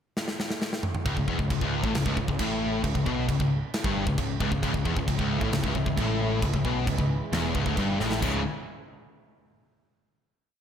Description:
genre	heavy metal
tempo	134 BPM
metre	4/4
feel	straight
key	C# minor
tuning	A4 = 441 Hz
part	tight metal drum kit	drums	0.2-8.3 s	china cymbal, crash cymbal, kick drum, snare drum, toms	-30 LUFS	equal	none
part	high-gain distorted guitar	riff	1.1-8.4 s	C#2 to C#3	-30 LUFS	left 7 dB	distortion
part	sludgy distorted guitar	riff	1.1-8.4 s	C#2 to C#3	-32 LUFS	right 7 dB	overdrive
part	sludgy distorted guitar	riff	1.1-8.4 s	C#2 to C#3	-33 LUFS	equal	overdrive
part	overdriven picked electric bass	bass	1.1-8.4 s	C#1 to B1	-32 LUFS	equal	none
part	phased analog pad	sustained chords	5.3-8.4 s	C#3 to E4	-38 LUFS	left 1 dB	phaser, chorus
room	light reverb, small room ambience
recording	none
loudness	-24 LUFS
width	side -8 dB against mid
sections	0.0-1.1 pickup bar; 1.1-8.2 riff; 8.2-10.0 final chord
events	drum fill 0.2-1.1, 8.0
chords	0.0 N.C.; 1.1 C#m

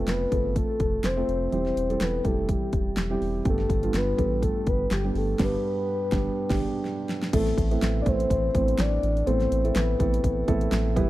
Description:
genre	piano-driven pop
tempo	124 BPM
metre	4/4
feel	swing 56% on 16ths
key	unclear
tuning	A4 = 440 Hz
part	soft octave-layered synth lead	melody	0.0-10.7 s	G4 to D5	-28 LUFS	left 2 dB	chorus
part	felt-muted upright piano	accompaniment	0.0-11.1 s	G2 to C5	-29 LUFS	right 4 dB	none
part	round analog bass	bass	0.0-11.1 s	E1 to A1	-28 LUFS	equal	none
part	pop drum kit	drums	0.1-11.1 s	crash cymbal, handclaps, hi-hat, kick drum, snare drum	-27 LUFS	equal	none
room	digital ambience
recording	dry, close 1970s-style studio recording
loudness	-22 LUFS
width	side -16 dB against mid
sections	0.0-7.3 A section; 7.3-11.1 B section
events	band accent 5.4-7.3; drum fill 6.8-7.3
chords	0.0 F; 1.5 C/E; 3.5 G; 7.3 Amadd9

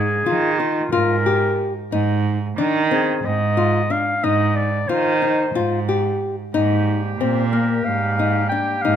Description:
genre	contemporary instrumental, chamber music in an uneven meter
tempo	182 BPM (eighths)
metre	7/8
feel	straight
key	Ab lydian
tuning	A4 = 440 Hz
part	breathy clarinet	melody	0.0-9.0 s	F4 to G5	-22 LUFS	left 2 dB	none
part	nylon-string guitar	arpeggios	0.0-9.0 s	Bb3 to G4	-22 LUFS	left 6 dB	none
part	rich cello	bass	0.0-9.0 s	Ab2 to Eb3	-21 LUFS	right 5 dB	none
part	warm woodwind section	sustained chords	6.5-9.0 s	G3 to G4	-29 LUFS	right 1 dB	none
room	light reverb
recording	close, detailed microphones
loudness	-17 LUFS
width	side -9 dB against mid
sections	0.0-9.0 A section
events	none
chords	0.0 Ab5; 6.5 Eb/Ab

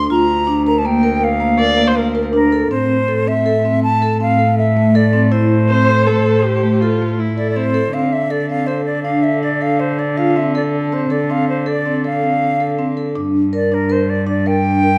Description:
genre	contemporary instrumental, chamber music in an uneven meter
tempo	161 BPM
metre	7/4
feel	straight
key	D minor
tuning	A4 = 439 Hz
part	silver concert flute	melody	0.0-15.0 s	A4 to Bb5	-21 LUFS	equal	none
part	warm cello	bass	0.0-15.0 s	D2 to D3	-21 LUFS	equal	none
part	vibraphone with soft mallets	arpeggios	0.1-15.0 s	A3 to Bb4	-20 LUFS	equal	none
part	dark viola	second line	1.6-7.9 s	E4 to D5	-21 LUFS	equal	none
room	moderate recital hall reverb, RT60 1.4 s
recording	none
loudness	-16 LUFS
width	mono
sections	0.0-7.9 A section; 7.9-15.0 B section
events	none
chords	0.1 Bb/D; 2.7 Am; 7.9 Dm7; 13.2 Gm

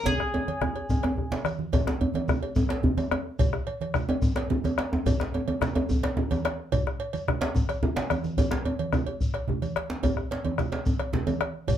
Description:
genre	west african traditional, West African drum ensemble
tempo	144 BPM (dotted quarters)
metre	12/8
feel	straight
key	unclear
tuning	A4 = 437 Hz
part	bowl-back mandolin	melody	0.0-1.4 s	Ab4	-31 LUFS	left 1 dB	none
part	bombo	percussion	0.1-11.8 s	none	-29 LUFS	left 2 dB	none
part	congas	percussion	0.1-11.8 s	none	-33 LUFS	right 4 dB	none
part	cowbell	percussion	0.1-11.8 s	none	-35 LUFS	right 3 dB	none
part	djembe	percussion	0.1-11.8 s	none	-33 LUFS	left 2 dB	none
part	djembe	percussion	0.1-11.4 s	none	-28 LUFS	right 1 dB	none
part	shekere	percussion	0.1-11.8 s	none	-35 LUFS	left 1 dB	none
room	wet small room ambience, RT60 0.5 s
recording	heard from further back in the room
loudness	-25 LUFS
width	side -10 dB against mid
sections	0.0-1.7 A section; 1.7-11.8 B section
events	drum fill 0.1-1.7, 8.0-8.4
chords	none

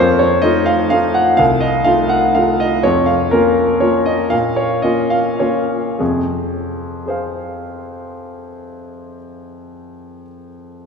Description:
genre	classical, piano waltz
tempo	94-137 BPM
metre	3/4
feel	rubato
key	F minor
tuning	A4 = 440 Hz
part	clear grand piano	solo	0.0-10.9 s	C2 to Gb5	-14 LUFS	equal	none
room	wet church reverb, RT60 2.8 s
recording	recorded in a church or concert hall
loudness	-13 LUFS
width	side -5 dB against mid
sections	0.0-6.0 A section; 6.0-9.2 B section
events	slowing down 2.1-6.0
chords	0.0 F7; 2.8 Bbm/F; 6.0 Fm

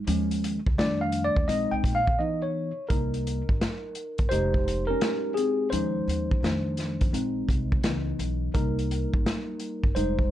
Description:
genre	hip hop, jazz-hop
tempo	85 BPM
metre	4/4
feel	swing 65% on 16ths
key	unclear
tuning	A4 = 439 Hz
part	tine electric piano	accompaniment	0.0-10.3 s	Eb3 to G5	-27 LUFS	left 1 dB	lush chorus, plate reverb
part	upright bass	bass	0.1-10.3 s	F1 to Bb2	-31 LUFS	equal	none
part	vintage drum kit	drums	0.1-10.3 s	hi-hat, kick drum, snare drum	-27 LUFS	equal	none
room	moderate small room ambience, RT60 0.5 s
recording	dark, warm production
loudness	-24 LUFS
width	side -12 dB against mid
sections	0.0-2.9 A section; 2.9-10.3 B section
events	tine electric piano solo 0.0-2.9, 2.9-10.3; break 2.2-2.9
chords	0.1 Eb9sus4; 0.8 F13; 1.5 Bb7sus4; 2.2 Dbm7; 2.9 Cm7; 4.3 Fm9; 5.7 Eb9sus4; 6.4 F13; 7.1 Bb7sus4; 7.8 Dbm7; 8.5 Cm7

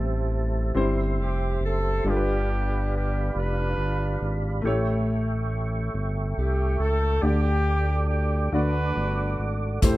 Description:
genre	slow gospel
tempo	46 BPM (dotted quarters)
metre	6/8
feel	straight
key	G major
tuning	A4 = 441 Hz
part	warm grand piano	accompaniment	0.0-10.0 s	G2 to D5	-30 LUFS	left 2 dB	none
part	percussive tonewheel organ	sustained chords	0.0-10.0 s	G4 to D6	-32 LUFS	right 3 dB	slow rotary speaker, chorus vibrato
part	smooth gliding synth bass	bass	0.0-10.0 s	F1 to D2	-25 LUFS	equal	none
part	warm horn section	melody	1.2-9.8 s	B3 to B4	-29 LUFS	equal	none
part	natural country drum kit	drums	9.8-10.0 s	hi-hat, kick drum	-19 LUFS	equal	none
part	tambourine	percussion	9.8-10.0 s	none	-38 LUFS	left 3 dB	none
room	little or no reverb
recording	rough home demo mix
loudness	-23 LUFS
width	side -17 dB against mid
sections	0.0-10.0 A section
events	none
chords	0.0 Am7; 0.8 C; 2.1 G7; 4.7 A7; 7.2 Dsus4; 8.5 D

